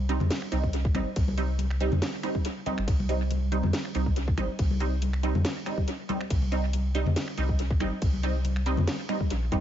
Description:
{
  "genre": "deep dubstep",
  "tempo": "140 BPM",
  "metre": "4/4",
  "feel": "swing 54% on 16ths, half-time",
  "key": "C minor",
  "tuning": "A4 = 441 Hz",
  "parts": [
    { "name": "soft dub sub bass", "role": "bass", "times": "0.0-9.6 s", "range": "G1 to F2", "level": "-27 LUFS", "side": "equal", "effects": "none" },
    { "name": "filtered dub chord stab", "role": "stabs", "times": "0.1-9.6 s", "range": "G3 to Eb4", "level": "-32 LUFS", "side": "right 4 dB", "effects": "phaser, ensemble chorus, cassette tape, dub echo" },
    { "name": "garage drum kit", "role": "drums", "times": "0.1-9.6 s", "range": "finger snaps, hi-hat, ride cymbal, snare drum", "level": "-36 LUFS", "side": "right 1 dB", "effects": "dub echo" },
    { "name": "congas", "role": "percussion", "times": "0.2-9.6 s", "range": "none", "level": "-34 LUFS", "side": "left 3 dB", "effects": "dub echo" },
    { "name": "electronic kick drum", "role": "drums", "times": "0.6-9.6 s", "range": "none", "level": "-27 LUFS", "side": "equal", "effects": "none" }
  ],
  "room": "digital ambience",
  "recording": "echo-heavy mix, nothing above 7.6 kHz",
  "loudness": "-25 LUFS",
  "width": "side -11 dB against mid",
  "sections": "0.0-9.6 A section",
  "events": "none",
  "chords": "0.0 Cm"
}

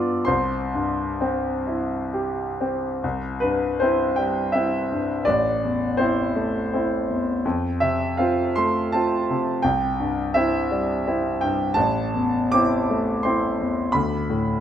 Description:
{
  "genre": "classical, romantic nocturne for solo piano",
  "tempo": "61-86 BPM",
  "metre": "3/4",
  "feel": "rubato",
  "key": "C major",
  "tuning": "A4 = 441 Hz",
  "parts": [
    { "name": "clear concert grand piano", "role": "solo", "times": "0.0-14.6 s", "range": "A1 to D6", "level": "-20 LUFS", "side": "equal", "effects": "none" }
  ],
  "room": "moderate recital hall reverb, RT60 1.3 s",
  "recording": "none",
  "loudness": "-20 LUFS",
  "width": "side -10 dB against mid",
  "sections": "0.0-3.0 A section; 3.0-14.6 B section",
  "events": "none",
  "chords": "0.3 C; 5.3 Am; 7.4 F; 9.6 C; 11.8 Am; 14.0 D5"
}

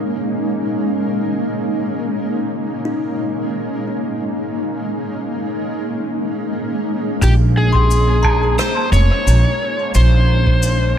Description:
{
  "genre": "ambient dub",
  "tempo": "88 BPM",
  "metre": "4/4",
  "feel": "straight",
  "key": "Bb minor",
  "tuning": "A4 = 442 Hz",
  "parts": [
    { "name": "granular cloud pad", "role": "sustained chords", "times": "0.0-11.0 s", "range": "Ab3 to Eb4", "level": "-21 LUFS", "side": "equal", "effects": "built-in reverb" },
    { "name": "kalimba", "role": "arpeggios", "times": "2.9-10.5 s", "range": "Eb4 to C6", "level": "-26 LUFS", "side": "left 3 dB", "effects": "analog delay" },
    { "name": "overdriven slide guitar", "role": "melody", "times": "7.2-11.0 s", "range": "G4 to Db5", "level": "-20 LUFS", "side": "equal", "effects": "dub echo" },
    { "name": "upright bass", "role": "bass", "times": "7.2-11.0 s", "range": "F1 to Bb1", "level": "-13 LUFS", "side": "equal", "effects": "none" },
    { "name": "electronic kick drum", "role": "drums", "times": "7.2-10.6 s", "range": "none", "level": "-19 LUFS", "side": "equal", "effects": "studio reverb" },
    { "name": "shaker, woodblock and rim click", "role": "drums", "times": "7.2-10.8 s", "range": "none", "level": "-24 LUFS", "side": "equal", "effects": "studio reverb, dub echo" }
  ],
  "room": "small room ambience",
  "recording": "echo-heavy mix",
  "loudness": "-15 LUFS",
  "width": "side -9 dB against mid",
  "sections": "0.0-7.2 A section; 7.2-11.0 B section",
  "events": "filter sweep on ambient pad 0.0-7.2",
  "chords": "0.0 Eb7sus4; 7.2 Bbm9"
}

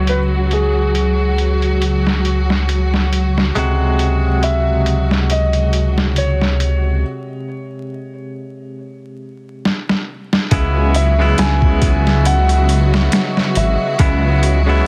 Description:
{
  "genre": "trip hop",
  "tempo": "69 BPM",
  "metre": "4/4",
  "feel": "swing 55% on 16ths",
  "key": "C# minor",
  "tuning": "A4 = 443 Hz",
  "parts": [
    { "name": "felt-muted upright piano", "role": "melody", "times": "0.0-14.9 s", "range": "G#4 to G#5", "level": "-25 LUFS", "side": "equal", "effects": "vintage 12-bit sampler grit, tape echo" },
    { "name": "direct-recorded clean electric guitar", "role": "accompaniment", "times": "0.0-14.9 s", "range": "B#2 to F#4", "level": "-24 LUFS", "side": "equal", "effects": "tremolo" },
    { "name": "rich studio string section", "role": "sustained chords", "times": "0.0-14.9 s", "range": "F#3 to F#4", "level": "-25 LUFS", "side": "equal", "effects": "low-pass filter" },
    { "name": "dark detuned saw bass", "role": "bass", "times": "0.0-14.8 s", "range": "G#1 to C#2", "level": "-18 LUFS", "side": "equal", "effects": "none" },
    { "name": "boom bap sampler-style drum kit", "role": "drums", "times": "0.1-14.7 s", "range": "hi-hat, kick drum, snare drum", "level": "-20 LUFS", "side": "equal", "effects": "overdrive, low-pass filter on hats, studio reverb, low-pass filter on snare, low-pass filter on kick" },
    { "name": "bowed-like drone", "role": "texture", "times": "12.8-14.9 s", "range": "D#5", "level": "-36 LUFS", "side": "equal", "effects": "none" }
  ],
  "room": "digital ambience",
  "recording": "dense, heavily limited modern master, vinyl crackle",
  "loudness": "-16 LUFS",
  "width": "mono",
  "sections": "0.0-10.5 A section; 10.5-14.9 B section",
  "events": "break 7.0-10.5; drum fill 9.6-10.5",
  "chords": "0.0 C#m7; 3.6 G#7/C#; 10.5 C#m7"
}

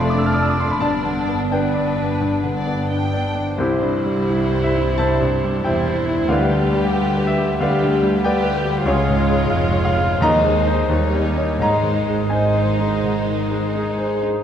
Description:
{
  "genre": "classical, romantic movement for piano and orchestra",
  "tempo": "80-97 BPM",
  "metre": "4/4",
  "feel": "rubato",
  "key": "Ab major from 8.9 s",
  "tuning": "A4 = 440 Hz",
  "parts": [
    { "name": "clear grand piano", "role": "melody", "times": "0.0-14.4 s", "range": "C2 to F6", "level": "-19 LUFS", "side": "left 1 dB", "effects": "none" },
    { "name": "warm chamber violin section", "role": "melody", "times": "0.0-14.2 s", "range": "B4 to G5", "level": "-31 LUFS", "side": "left 1 dB", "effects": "none" },
    { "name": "warm chamber violin section", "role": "second line", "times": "0.0-14.2 s", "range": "D4 to G4", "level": "-27 LUFS", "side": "equal", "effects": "none" },
    { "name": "warm chamber viola section", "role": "accompaniment", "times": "0.0-14.2 s", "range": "G3 to B3", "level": "-26 LUFS", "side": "right 1 dB", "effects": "none" },
    { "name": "dark chamber cello section", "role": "bass", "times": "0.0-14.3 s", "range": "C2 to Ab2", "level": "-26 LUFS", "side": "right 3 dB", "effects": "none" },
    { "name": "dark chamber double bass section", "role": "bass", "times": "0.0-14.3 s", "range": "E1 to Eb2", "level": "-26 LUFS", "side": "right 2 dB", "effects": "none" },
    { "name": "timpani", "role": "percussion", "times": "10.2-10.9 s", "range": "Eb3", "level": "-28 LUFS", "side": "right 1 dB", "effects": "none" },
    { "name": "warm clarinet", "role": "second line", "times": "13.7-14.4 s", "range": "Ab4", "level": "-26 LUFS", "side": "equal", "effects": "none" },
    { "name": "warm French horn section", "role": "sustained chords", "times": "13.8-14.4 s", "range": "Ab3", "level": "-27 LUFS", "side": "left 1 dB", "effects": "none" }
  ],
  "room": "wet recital hall reverb, RT60 1.4 s",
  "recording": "dark, warm production",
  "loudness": "-16 LUFS",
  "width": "side -9 dB against mid",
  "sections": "0.0-14.4 A section",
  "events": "none",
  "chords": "0.0 Dm/F; 0.8 G; 3.6 C; 6.3 G7/D; 8.9 Db; 10.2 Ab/Eb; 10.9 Eb7; 11.6 Ab"
}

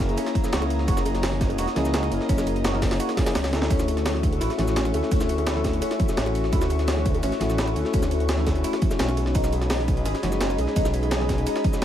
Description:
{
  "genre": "liquid drum and bass",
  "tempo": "170 BPM",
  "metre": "4/4",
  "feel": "straight",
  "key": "unclear",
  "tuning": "A4 = 440 Hz",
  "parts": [
    { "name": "tine electric piano", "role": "accompaniment", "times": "0.0-11.8 s", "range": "G#3 to A#4", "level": "-28 LUFS", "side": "left 2 dB", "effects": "ping-pong delay" },
    { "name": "airy breathy pad", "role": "sustained chords", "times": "0.0-11.8 s", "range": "F#4 to C#6", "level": "-32 LUFS", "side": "left 2 dB", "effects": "chorus, sidechain pumping" },
    { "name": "swelling detuned saw bass", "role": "bass", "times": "0.0-11.8 s", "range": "E1 to D2", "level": "-26 LUFS", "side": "equal", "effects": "none" },
    { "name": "breakbeat sampler-style drum kit", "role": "drums", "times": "0.0-11.8 s", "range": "cabasa, hi-hat, ride cymbal, snare drum", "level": "-31 LUFS", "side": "equal", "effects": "none" },
    { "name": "electronic kick drum", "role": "drums", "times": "0.0-11.7 s", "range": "none", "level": "-25 LUFS", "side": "equal", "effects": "overdrive" },
    { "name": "jungle sampler-style drum kit", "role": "drums", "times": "0.0-11.8 s", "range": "hi-hat, ride cymbal, snare drum", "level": "-34 LUFS", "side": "equal", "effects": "high-pass filter on cymbals, high-pass filter on snare, high-pass filter on hats" },
    { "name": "electric guitar at the edge of break-up", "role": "arpeggios", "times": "0.2-11.8 s", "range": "C#4 to G#4", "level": "-32 LUFS", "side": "equal", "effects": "ping-pong delay" },
    { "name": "bongos and congas", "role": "percussion", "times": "0.2-11.8 s", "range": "none", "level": "-36 LUFS", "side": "right 2 dB", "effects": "none" }
  ],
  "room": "digital ambience",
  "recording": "none",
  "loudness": "-21 LUFS",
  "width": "side -10 dB against mid",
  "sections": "0.0-11.8 A section",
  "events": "kick drops out 3.4-3.7; drum fill 3.4",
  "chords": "0.0 F#9; 3.5 Dmaj9; 9.2 B6"
}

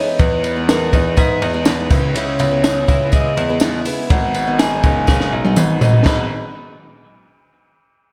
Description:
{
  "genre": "jangly indie pop",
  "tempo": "123 BPM",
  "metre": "4/4",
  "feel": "straight",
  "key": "G# minor",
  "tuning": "A4 = 441 Hz",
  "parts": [
    { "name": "hollow clarinet-like synth lead", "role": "melody", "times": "0.0-6.3 s", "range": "A#4 to B5", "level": "-24 LUFS", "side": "equal", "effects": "chorus, slapback echo" },
    { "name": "picked twelve-string acoustic guitar", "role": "accompaniment", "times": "0.0-6.3 s", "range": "G#2 to E4", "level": "-27 LUFS", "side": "equal", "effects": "slapback echo" },
    { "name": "twelve-string electric guitar", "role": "arpeggios", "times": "0.0-6.3 s", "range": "G#2 to G#4", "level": "-26 LUFS", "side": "equal", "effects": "slapback echo" },
    { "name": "bright grand piano", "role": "bass", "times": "0.2-6.3 s", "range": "F#1 to G#2", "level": "-24 LUFS", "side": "equal", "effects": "none" },
    { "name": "compact cocktail drum kit", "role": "drums", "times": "0.2-6.2 s", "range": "china cymbal, crash cymbal, hi-hat, kick drum, ride cymbal, snare drum, toms", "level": "-19 LUFS", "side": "equal", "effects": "none" },
    { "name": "tambourine", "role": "percussion", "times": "0.2-6.3 s", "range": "none", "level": "-37 LUFS", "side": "equal", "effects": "none" }
  ],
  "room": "moderate scoring stage reverb, RT60 1.7 s, small room ambience",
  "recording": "big arena sound",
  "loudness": "-16 LUFS",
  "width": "mono",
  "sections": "0.0-6.1 A section; 6.1-8.0 B section",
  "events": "drum fill 5.1-6.1",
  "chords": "0.0 Emaj7; 1.9 C#m7; 4.1 G#m7"
}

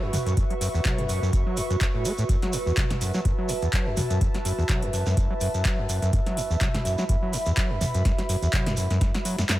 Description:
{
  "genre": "acid house",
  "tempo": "125 BPM",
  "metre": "4/4",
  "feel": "swing 56% on 16ths",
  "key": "F# minor",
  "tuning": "A4 = 439 Hz",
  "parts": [
    { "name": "overdriven acid bass", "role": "riff", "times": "0.0-9.6 s", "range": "F#1 to A3", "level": "-27 LUFS", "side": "equal", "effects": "distortion, sidechain pumping, tape echo" },
    { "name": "warbly tape-like pad", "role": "texture", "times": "0.0-9.6 s", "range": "F#4 to C#6", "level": "-32 LUFS", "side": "right 1 dB", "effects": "chorus, built-in reverb, phaser, sidechain pumping" },
    { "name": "electro analog drum machine", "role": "drums", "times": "0.1-9.6 s", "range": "handclaps, hi-hat, snare drum, toms", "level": "-30 LUFS", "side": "equal", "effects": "overdrive" },
    { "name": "shekere", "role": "percussion", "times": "0.1-9.6 s", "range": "none", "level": "-38 LUFS", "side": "right 4 dB", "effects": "none" },
    { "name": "electronic kick drum", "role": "drums", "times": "0.4-9.1 s", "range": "none", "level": "-25 LUFS", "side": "equal", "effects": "overdrive" },
    { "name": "dark analog pad", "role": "sustained chords", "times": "4.4-9.6 s", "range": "E5", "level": "-34 LUFS", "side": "right 2 dB", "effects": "chorus, sidechain pumping" }
  ],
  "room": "light reverb",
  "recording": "none",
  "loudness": "-22 LUFS",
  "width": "side -15 dB against mid",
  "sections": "0.0-9.6 A section",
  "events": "drum fill 9.0-9.6",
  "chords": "0.0 F#m7"
}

